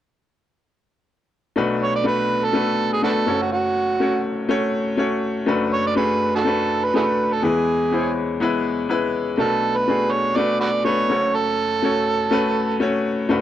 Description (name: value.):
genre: piano-driven pop.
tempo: 123 BPM.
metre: 4/4.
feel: swing 56% on 16ths.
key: F# minor.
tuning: A4 = 442 Hz.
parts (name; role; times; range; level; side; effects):
bright upright piano; accompaniment; 1.6-13.4 s; F#1 to C#5; -20 LUFS; left 3 dB; none.
overdriven harmonica; melody; 1.8-12.8 s; D4 to D5; -21 LUFS; right 4 dB; none.
room: light reverb.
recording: dry, close 1970s-style studio recording.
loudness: -18 LUFS.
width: side -11 dB against mid.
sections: 1.6-13.4 A section.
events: none.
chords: 1.6 Bm7; 3.3 F#m; 5.5 Bm7/F#; 7.4 E; 9.4 Bm7; 11.1 F#m.